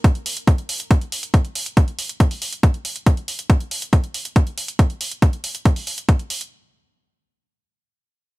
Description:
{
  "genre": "psychedelic trance",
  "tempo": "139 BPM",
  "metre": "4/4",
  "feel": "straight",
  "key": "none",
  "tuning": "none",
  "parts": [
    { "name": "electronic hi-hat", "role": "drums", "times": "0.0-6.5 s", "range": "none", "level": "-27 LUFS", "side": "right 2 dB", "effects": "overdrive" },
    { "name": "electronic kick drum", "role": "drums", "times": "0.0-6.2 s", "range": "none", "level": "-14 LUFS", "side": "equal", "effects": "none" }
  ],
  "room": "digital ambience",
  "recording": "none",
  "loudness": "-18 LUFS",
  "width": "side -20 dB against mid",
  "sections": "0.0-6.5 A section",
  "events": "none",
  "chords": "none"
}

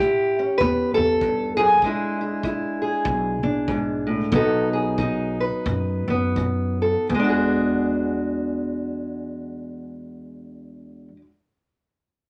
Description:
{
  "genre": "acoustic country blues, solo or duo",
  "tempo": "81-98 BPM",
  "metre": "4/4",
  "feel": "swing 60% on 8ths",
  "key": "E mixolydian",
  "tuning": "A4 = 440 Hz",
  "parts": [
    { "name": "fingerpicked steel-string acoustic guitar", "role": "melody", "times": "0.0-11.3 s", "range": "E2 to B4", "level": "-24 LUFS", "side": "equal", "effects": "none" },
    { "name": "upright bass", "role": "bass", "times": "0.0-11.1 s", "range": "E1 to F#2", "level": "-29 LUFS", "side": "equal", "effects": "none" },
    { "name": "kick drum", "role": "drums", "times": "0.6-6.6 s", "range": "none", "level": "-35 LUFS", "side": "equal", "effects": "none" }
  ],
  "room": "moderate club ambience, RT60 0.5 s",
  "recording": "none",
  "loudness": "-22 LUFS",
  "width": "mono",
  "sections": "0.0-7.1 A section; 7.1-10.1 B section",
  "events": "slowing down 1.8-7.1",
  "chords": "0.0 A7; 1.8 E7; 4.3 B7; 7.1 E9"
}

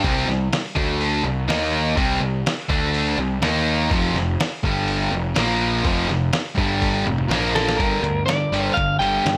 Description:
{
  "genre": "hard rock",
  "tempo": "124 BPM",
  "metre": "4/4",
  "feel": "straight",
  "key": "G minor",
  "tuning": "A4 = 440 Hz",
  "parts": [
    { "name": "overdriven electric guitar", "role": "riff", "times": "0.0-9.4 s", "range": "F2 to Eb4", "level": "-26 LUFS", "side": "equal", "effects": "none" },
    { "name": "sludgy distorted guitar", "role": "riff", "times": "0.0-9.4 s", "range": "F2 to Eb4", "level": "-28 LUFS", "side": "equal", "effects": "overdrive" },
    { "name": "fuzz picked electric bass", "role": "bass", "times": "0.0-9.4 s", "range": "F1 to G2", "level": "-28 LUFS", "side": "equal", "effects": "overdrive" },
    { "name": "lo-fi sampler-style drum kit", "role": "drums", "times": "0.0-9.4 s", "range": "hi-hat, kick drum, snare drum, toms", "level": "-27 LUFS", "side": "equal", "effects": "none" },
    { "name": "lightly driven lead guitar", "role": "melody", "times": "7.6-9.4 s", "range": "A4 to G5", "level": "-24 LUFS", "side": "equal", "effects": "none" }
  ],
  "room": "little or no reverb",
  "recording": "none",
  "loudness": "-21 LUFS",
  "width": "mono",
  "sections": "0.0-7.8 A section; 7.8-9.4 B section",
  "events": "drum fill 6.8-7.8",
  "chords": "0.0 C5; 0.8 D5; 1.2 C5; 1.5 Eb5; 2.0 C5; 2.7 D5; 3.2 C5; 3.4 Eb5; 3.9 F5; 4.6 G5; 5.1 F5; 5.4 Bb5; 5.8 F5; 6.6 G5; 7.1 F5; 7.3 Bb5; 7.8 Gm"
}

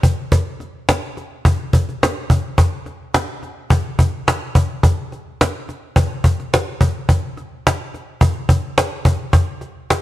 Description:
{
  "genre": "rock",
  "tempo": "106 BPM",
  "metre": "4/4",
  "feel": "straight",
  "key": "none",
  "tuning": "none",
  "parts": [
    { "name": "cajon", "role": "drums", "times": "0.0-10.0 s", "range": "none", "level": "-15 LUFS", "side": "equal", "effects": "none" }
  ],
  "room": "light reverb",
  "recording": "none",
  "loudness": "-16 LUFS",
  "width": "side -15 dB against mid",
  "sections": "0.0-10.0 A section",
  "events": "none",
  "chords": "none"
}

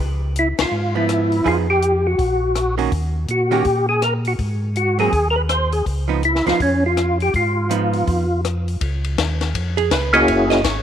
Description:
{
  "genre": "soul jazz organ trio",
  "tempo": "163 BPM",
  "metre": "4/4",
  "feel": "swing 63% on 8ths",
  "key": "Db mixolydian",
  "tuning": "A4 = 440 Hz",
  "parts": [
    { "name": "mellow tonewheel organ", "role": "bass", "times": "0.0-10.8 s", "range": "Gb1 to Bb2", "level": "-22 LUFS", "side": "equal", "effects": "slow rotary speaker" },
    { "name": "percussive tonewheel organ", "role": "melody", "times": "0.4-10.6 s", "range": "Bb3 to C5", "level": "-18 LUFS", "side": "left 1 dB", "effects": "slow rotary speaker, chorus vibrato" },
    { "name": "compact cocktail drum kit", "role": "drums", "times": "0.4-10.8 s", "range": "hi-hat, kick drum, ride cymbal, rim click, snare drum", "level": "-25 LUFS", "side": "left 4 dB", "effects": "none" },
    { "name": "archtop guitar, miked and amplified", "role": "accompaniment", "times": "1.0-10.8 s", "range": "Eb3 to Fb5", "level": "-24 LUFS", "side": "right 10 dB", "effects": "none" }
  ],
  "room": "light reverb, small room ambience",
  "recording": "1960s-style stereo",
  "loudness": "-16 LUFS",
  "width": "side -9 dB against mid",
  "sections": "0.0-8.8 A section; 8.8-10.8 B section",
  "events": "band accent 0.5; hollow-body jazz guitar solo 8.8-10.8",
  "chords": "0.0 Db7; 1.5 Fm7b5; 2.2 Gb6/Bb; 2.9 Ebm; 4.4 Ab7; 5.9 Db9; 10.3 Gb9"
}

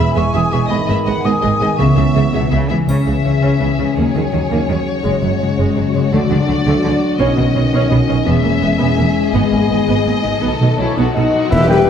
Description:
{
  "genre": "cinematic, heroic adventure film score",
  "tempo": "111 BPM (dotted quarters)",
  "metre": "12/8",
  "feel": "straight",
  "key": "C# minor",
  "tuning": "A4 = 441 Hz",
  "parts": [
    { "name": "warm symphonic violin section", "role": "melody", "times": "0.0-11.9 s", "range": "E4 to E5", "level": "-23 LUFS", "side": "left 5 dB", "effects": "none" },
    { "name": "hollow concert flute", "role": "second line", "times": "0.0-2.3, 10.8-11.9 s", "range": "C#5 to D#6", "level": "-23 LUFS", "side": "left 2 dB", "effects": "none" },
    { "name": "warm symphonic violin section", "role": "second line", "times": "0.0-11.9 s", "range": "B3 to G#5", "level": "-26 LUFS", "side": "left 2 dB", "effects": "none" },
    { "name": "dark symphonic viola section", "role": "accompaniment", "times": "0.0-11.9 s", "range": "E3 to G#4", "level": "-23 LUFS", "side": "right 2 dB", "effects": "none" },
    { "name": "dark trombone section", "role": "sustained chords", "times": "0.0-2.7, 11.9 s", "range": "D#3 to B3", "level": "-22 LUFS", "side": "right 4 dB", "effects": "none" },
    { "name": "concert harp", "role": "arpeggios", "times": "0.0-11.9 s", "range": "E2 to G#5", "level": "-21 LUFS", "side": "left 7 dB", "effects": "none" },
    { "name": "clear symphonic cello section", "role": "bass", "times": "0.0-11.9 s", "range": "E2 to E3", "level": "-20 LUFS", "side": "right 3 dB", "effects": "none" },
    { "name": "clear symphonic double bass section", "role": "bass", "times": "0.0-11.9 s", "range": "E1 to D#2", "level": "-20 LUFS", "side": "right 3 dB", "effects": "none" },
    { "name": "timpani", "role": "percussion", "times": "1.8-3.4, 11.5-11.9 s", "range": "E2 to C#3", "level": "-18 LUFS", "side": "right 2 dB", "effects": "none" },
    { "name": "mellow French horn section", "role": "sustained chords", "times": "2.9-11.9 s", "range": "D#3 to G4", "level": "-19 LUFS", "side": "left 3 dB", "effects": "none" },
    { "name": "triangle, cymbal swell and tam-tam", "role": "percussion", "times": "2.9-3.6, 7.2-11.9 s", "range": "none", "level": "-26 LUFS", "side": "left 2 dB", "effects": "none" },
    { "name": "dark trumpet section", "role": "stabs", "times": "10.8-11.9 s", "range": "C#5 to G5", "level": "-19 LUFS", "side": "left 1 dB", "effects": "none" },
    { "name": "dark cor anglais", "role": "second line", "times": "11.5-11.9 s", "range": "E5", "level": "-25 LUFS", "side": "right 3 dB", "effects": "none" },
    { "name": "warm clarinet", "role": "second line", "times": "11.5-11.9 s", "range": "B4", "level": "-24 LUFS", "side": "right 5 dB", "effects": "none" },
    { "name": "concert snare drum, clash cymbals and concert bass drum", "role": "drums", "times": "11.5-11.9 s", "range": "none", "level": "-21 LUFS", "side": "equal", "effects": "none" }
  ],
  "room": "wet scoring stage reverb, RT60 1.7 s",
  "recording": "none",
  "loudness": "-13 LUFS",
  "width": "side -8 dB against mid",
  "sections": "0.0-2.9 A section; 2.9-11.5 B section",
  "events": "band accent 11.5-11.9",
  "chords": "0.0 E; 0.7 G#m; 1.8 C#m7; 4.0 D#m7; 5.0 F#sus2; 6.1 D; 7.2 Badd9; 8.3 E; 9.3 G#m; 10.4 B7"
}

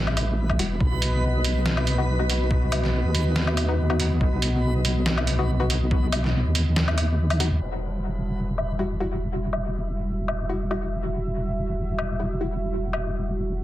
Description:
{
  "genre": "deep dubstep",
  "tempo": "141 BPM",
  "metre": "4/4",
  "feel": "swing 54% on 16ths, half-time",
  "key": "E harmonic minor",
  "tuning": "A4 = 444 Hz",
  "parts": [
    { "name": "dark analog pad", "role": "sustained chords", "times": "0.0-13.6 s", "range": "G3 to E5", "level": "-31 LUFS", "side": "equal", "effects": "chorus" },
    { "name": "deep soft wobble bass", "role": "bass", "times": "0.0-13.6 s", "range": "E1 to D#2", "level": "-24 LUFS", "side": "equal", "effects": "chorus" },
    { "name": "backwards swelling texture", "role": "texture", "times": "0.0-7.6 s", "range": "B4", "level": "-35 LUFS", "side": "right 2 dB", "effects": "built-in reverb" },
    { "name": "trip hop sampler-style drum kit", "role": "drums", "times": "0.1-13.0 s", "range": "crash cymbal, hi-hat, snare drum, woodblock", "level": "-28 LUFS", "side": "equal", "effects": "overdrive, low-pass filter on cymbals, low-pass filter on hats, low-pass filter on snare, low-pass filter on perc, low-pass filter on room" },
    { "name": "electronic kick drum", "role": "drums", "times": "0.5-6.0 s", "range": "none", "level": "-24 LUFS", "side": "equal", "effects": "overdrive" },
    { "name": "filtered dub chord stab", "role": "stabs", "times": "0.6-12.5 s", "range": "G3 to F#4", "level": "-32 LUFS", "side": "left 3 dB", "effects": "chorus, dub echo" }
  ],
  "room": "light reverb, digital ambience",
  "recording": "dense, heavily limited modern master",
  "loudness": "-22 LUFS",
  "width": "side -14 dB against mid",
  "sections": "0.0-7.6 A section; 7.6-13.6 B section",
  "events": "kick drops out 6.8-7.6; filter sweep on drum 7.6-13.6",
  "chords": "0.0 Emadd9; 0.8 B; 7.6 Emadd9"
}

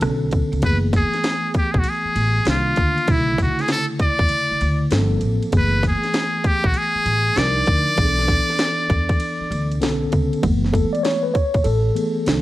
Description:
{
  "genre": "hip hop, jazz-hop",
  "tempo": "98 BPM",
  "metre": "4/4",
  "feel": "swing 65% on 16ths",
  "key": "unclear",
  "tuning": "A4 = 441 Hz",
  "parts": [
    { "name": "trumpet with metal mute", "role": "melody", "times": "0.0-9.8 s", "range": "E4 to D5", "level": "-21 LUFS", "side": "equal", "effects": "none" },
    { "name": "mellow tine electric piano", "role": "accompaniment", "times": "0.0-12.4 s", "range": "C#3 to D5", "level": "-24 LUFS", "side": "equal", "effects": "medium stereo tremolo" },
    { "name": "upright bass", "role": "bass", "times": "0.0-12.4 s", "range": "F#1 to E2", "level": "-21 LUFS", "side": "equal", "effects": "none" },
    { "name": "garage drum kit", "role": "drums", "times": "0.0-12.4 s", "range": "hi-hat, kick drum, ride cymbal, rim click, snare drum", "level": "-22 LUFS", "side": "equal", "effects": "none" }
  ],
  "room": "digital ambience",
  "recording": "vinyl crackle",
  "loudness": "-17 LUFS",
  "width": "side -16 dB against mid",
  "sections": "0.6-10.4 A section; 10.4-12.4 B section",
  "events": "tine electric piano solo 10.4-12.4",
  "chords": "0.0 Bm9; 0.6 F#m11; 2.5 Cm11; 3.1 Bm11; 4.9 Gm11; 5.5 F#m11; 7.4 Cm11; 8.0 Bm7; 9.8 Bm9; 10.4 F#m11"
}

